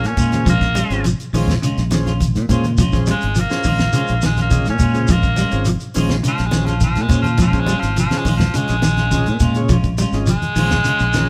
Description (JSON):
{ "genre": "afrobeat", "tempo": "104 BPM", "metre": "4/4", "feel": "straight", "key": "Bb dorian", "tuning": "A4 = 440 Hz", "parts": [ { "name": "raspy baritone saxophone", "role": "melody", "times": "0.0-11.3 s", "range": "F3 to Db4", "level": "-24 LUFS", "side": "equal", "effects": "none" }, { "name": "combo organ", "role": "accompaniment", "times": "0.0-11.3 s", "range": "Db4 to Eb5", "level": "-30 LUFS", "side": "equal", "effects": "none" }, { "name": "fingered electric bass", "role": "bass", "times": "0.0-11.3 s", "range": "Ab1 to Bb2", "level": "-22 LUFS", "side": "equal", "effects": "none" }, { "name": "damped 70s drum kit", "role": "drums", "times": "0.0-11.3 s", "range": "hi-hat, kick drum, snare drum", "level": "-25 LUFS", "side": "equal", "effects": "none" }, { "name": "shekere", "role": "percussion", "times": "0.0-11.3 s", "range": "none", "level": "-27 LUFS", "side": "equal", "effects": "none" }, { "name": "semi-hollow electric guitar", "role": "stabs", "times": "0.2-11.0 s", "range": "Ab3 to F4", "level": "-30 LUFS", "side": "equal", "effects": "none" }, { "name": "congas", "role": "percussion", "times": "0.2-11.3 s", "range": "none", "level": "-26 LUFS", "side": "equal", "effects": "none" }, { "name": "semi-hollow electric guitar", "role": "arpeggios", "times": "0.3-11.3 s", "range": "Db3 to G3", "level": "-25 LUFS", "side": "equal", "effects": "tremolo" } ], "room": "moderate stone room reverb, RT60 1.3 s", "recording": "band playing live in one room", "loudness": "-17 LUFS", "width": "mono", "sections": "0.0-11.3 A section", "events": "baritone saxophone solo 0.0-11.3", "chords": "0.0 Bbm7" }